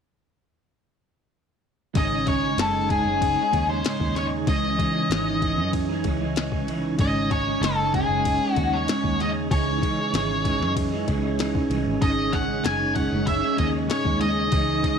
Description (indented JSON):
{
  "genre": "psychedelic rock",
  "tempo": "95 BPM",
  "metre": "4/4",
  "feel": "straight",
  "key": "unclear",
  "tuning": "A4 = 440 Hz",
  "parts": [
    { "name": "twelve-string electric guitar", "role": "riff", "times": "1.9-15.0 s", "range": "G#2 to D#4", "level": "-26 LUFS", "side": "right 1 dB", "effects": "rotary speaker, double-tracked left and right" },
    { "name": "octave-fuzz lead guitar", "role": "melody", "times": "2.0-15.0 s", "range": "G#4 to G#5", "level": "-25 LUFS", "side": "left 2 dB", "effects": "distortion, slapback echo" },
    { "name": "overdriven combo organ", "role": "sustained chords", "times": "2.0-15.0 s", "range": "D#3 to G#5", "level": "-33 LUFS", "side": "right 13 dB", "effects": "wide subtle chorus" },
    { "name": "fingered electric bass", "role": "bass", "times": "2.0-14.8 s", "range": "F#1 to F#2", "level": "-29 LUFS", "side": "right 1 dB", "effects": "none" },
    { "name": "minimal click drum kit", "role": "drums", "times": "2.0-15.0 s", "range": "kick drum, ride cymbal, snare drum", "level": "-27 LUFS", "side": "left 2 dB", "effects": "none" }
  ],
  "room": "little or no reverb",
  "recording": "1960s-style stereo",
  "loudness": "-21 LUFS",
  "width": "side -7 dB against mid",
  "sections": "2.0-15.0 A section",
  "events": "none",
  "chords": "2.0 G#sus4; 4.5 C#madd9; 7.0 G#sus4; 9.5 C#madd9; 12.0 G#sus4",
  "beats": "| 1.95 2.58 3.21 3.84 | 4.47 5.10 5.73 6.36 | 6.99 7.62 8.25 8.88 | 9.51 10.13 10.76 11.39 | 12.02 12.64 13.27 13.89 | 14.52"
}